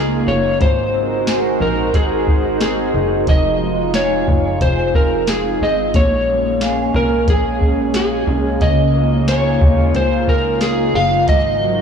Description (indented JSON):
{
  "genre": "dream pop",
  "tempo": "90 BPM",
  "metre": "4/4",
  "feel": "straight",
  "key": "Db major",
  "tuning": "A4 = 440 Hz",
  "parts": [
    { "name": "electric slide guitar", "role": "melody", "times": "0.0-11.8 s", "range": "Ab4 to F5", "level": "-18 LUFS", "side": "equal", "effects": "digital delay" },
    { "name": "warbly tape-like pad", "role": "sustained chords", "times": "0.0-11.8 s", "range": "Db3 to C5", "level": "-21 LUFS", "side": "right 1 dB", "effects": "chorus, built-in reverb" },
    { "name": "mellow electric guitar", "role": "arpeggios", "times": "0.0-11.8 s", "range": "F2 to Ab4", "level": "-22 LUFS", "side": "left 1 dB", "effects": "ensemble chorus, digital delay" },
    { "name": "plucky analog bass", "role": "bass", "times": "0.0-11.8 s", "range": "F1 to Eb2", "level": "-22 LUFS", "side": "equal", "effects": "none" },
    { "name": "soft vintage rhythm box", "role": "drums", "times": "0.6-11.4 s", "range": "hi-hat, kick drum, snare drum", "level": "-18 LUFS", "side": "equal", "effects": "none" },
    { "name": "celesta", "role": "texture", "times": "6.6-11.8 s", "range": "Eb5 to F5", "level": "-28 LUFS", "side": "right 4 dB", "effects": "digital delay" }
  ],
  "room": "moderate lush hall reverb, RT60 1.7 s, digital ambience",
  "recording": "blown-out, overdriven recording, overdrive, small room ambience",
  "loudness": "-14 LUFS",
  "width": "side -7 dB against mid",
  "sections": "0.0-11.8 A section",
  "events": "none",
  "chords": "0.0 Db6; 0.6 Ab7; 3.3 Fm7; 5.9 Bbm7; 8.6 Db6; 11.3 Ab7",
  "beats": "| 0.61 1.28 1.94 2.61 | 3.28 3.94 4.61 5.28 | 5.94 6.61 7.28 7.94 | 8.61 9.28 9.94 10.61 | 11.28"
}